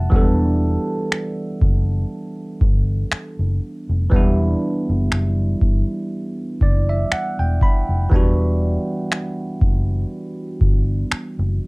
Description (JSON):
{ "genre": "contemporary R&B", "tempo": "60 BPM", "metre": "4/4", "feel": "swing 54% on 16ths", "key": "E minor", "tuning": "A4 = 440 Hz", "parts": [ { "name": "bell-like tine electric piano", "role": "accompaniment", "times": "0.0-11.7 s", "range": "E3 to B5", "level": "-23 LUFS", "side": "right 1 dB", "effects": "phaser, cassette tape" }, { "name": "vintage muted fingered electric bass", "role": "bass", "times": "0.0-11.6 s", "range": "E1 to G1", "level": "-19 LUFS", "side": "equal", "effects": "none" }, { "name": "booming analog drum machine", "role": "drums", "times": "0.1-11.4 s", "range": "finger snaps, kick drum", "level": "-16 LUFS", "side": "equal", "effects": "none" } ], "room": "little or no reverb", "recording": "home recording on cassette", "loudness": "-17 LUFS", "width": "side -28 dB against mid", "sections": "0.0-11.7 A section", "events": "tine electric piano fill 6.1-8.1", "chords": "0.0 Em9" }